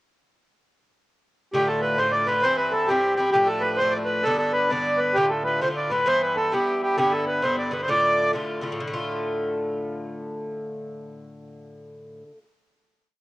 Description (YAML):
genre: celtic folk, Celtic polka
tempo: 132 BPM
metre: 2/4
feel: swing 63% on 8ths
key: D dorian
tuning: A4 = 440 Hz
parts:
  - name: accordion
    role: melody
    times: 1.5-8.3 s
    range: G4 to D5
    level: -21 LUFS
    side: equal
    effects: cassette tape
  - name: Irish bouzouki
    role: accompaniment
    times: 1.5-12.4 s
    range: G2 to F4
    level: -28 LUFS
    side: left 1 dB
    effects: cassette tape
room: moderate spring reverb, RT60 2.0 s, small room ambience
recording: home recording on cassette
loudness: -21 LUFS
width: side -18 dB against mid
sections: 1.5-8.8 A section; 8.8-10.6 final chord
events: none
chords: 1.5 Dm; 2.4 C; 3.3 Dm; 4.3 G; 5.2 Dm; 6.1 Em; 7.0 G6; 7.9 Dm